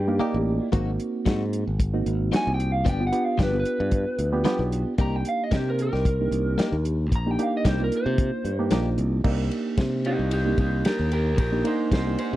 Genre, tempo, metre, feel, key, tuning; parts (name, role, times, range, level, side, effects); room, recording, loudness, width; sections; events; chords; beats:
straight-eighth soul blues; 113 BPM; 4/4; swing 55% on 16ths; C minor; A4 = 440 Hz
electric guitar through a small old amp; melody; 0.0-12.4 s; Eb4 to Bb5; -28 LUFS; equal
reed electric piano; accompaniment; 0.0-12.4 s; Bb3 to F5; -28 LUFS; right 2 dB; phaser
modern bright fingered electric bass; bass; 0.0-12.4 s; G1 to C3; -25 LUFS; equal
direct-recorded clean electric guitar; stabs; 0.2-8.9 s; F3 to G4; -31 LUFS; left 7 dB
warm soul drum kit; drums; 0.7-12.3 s; crash cymbal, hi-hat, kick drum, ride cymbal, snare drum; -25 LUFS; equal
small room ambience; dry, close 1970s-style studio recording; -22 LUFS; side -15 dB against mid
0.0-9.2 A section; 9.2-12.4 B section
reed electric piano fill 0.0-0.7; clean electric guitar solo 9.2-12.4
0.0 Cm7 (rootless); 0.7 Ab7; 2.9 G7; 5.0 Cm7
0.20 | 0.73 1.26 1.80 2.33 | 2.86 3.39 3.92 4.46 | 4.99 5.52 6.05 6.59 | 7.12 7.65 8.18 8.72 | 9.25 9.78 10.31 10.85 | 11.38 11.91